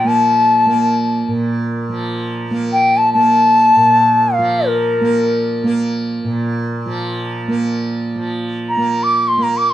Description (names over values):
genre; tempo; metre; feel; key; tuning
indian classical, Hindustani; free time; none; none; unclear; A4 = 441 Hz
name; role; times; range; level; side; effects
bright reedy bansuri; melody; 0.0-9.7 s; Bb4 to D6-22c; -12 LUFS; left 2 dB; none
tanpura; drone; 0.0-9.7 s; Bb2 to Bb3; -18 LUFS; right 2 dB; none
room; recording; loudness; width
moderate small room reverb, RT60 0.5 s; dark, warm production; -13 LUFS; side -12 dB against mid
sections
0.0-8.1 A section; 8.1-9.7 A section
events
none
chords
none